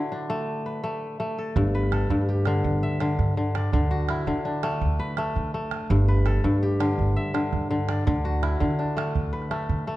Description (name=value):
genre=west african traditional, West African string and xylophone music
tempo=111 BPM (dotted quarters)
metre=12/8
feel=straight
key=G major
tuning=A4 = 444 Hz
part: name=kora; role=arpeggios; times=0.0-10.0 s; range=G2 to E5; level=-25 LUFS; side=left 1 dB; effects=none
part: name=upright bass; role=bass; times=1.6-10.0 s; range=G1 to D3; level=-25 LUFS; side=equal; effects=none
part: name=calabash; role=percussion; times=1.6-9.9 s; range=none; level=-33 LUFS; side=right 5 dB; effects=none
room=moderate recital hall reverb, RT60 1.8 s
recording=dark, warm production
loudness=-22 LUFS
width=side -16 dB against mid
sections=0.0-1.6 A section; 1.6-10.0 A section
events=none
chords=0.0 D; 1.6 G; 3.7 D; 5.9 G; 8.1 D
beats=0.47 1.01 | 1.56 2.10 2.64 3.19 | 3.73 4.27 4.81 5.35 | 5.89 6.44 6.98 7.52 | 8.06 8.61 9.15 9.70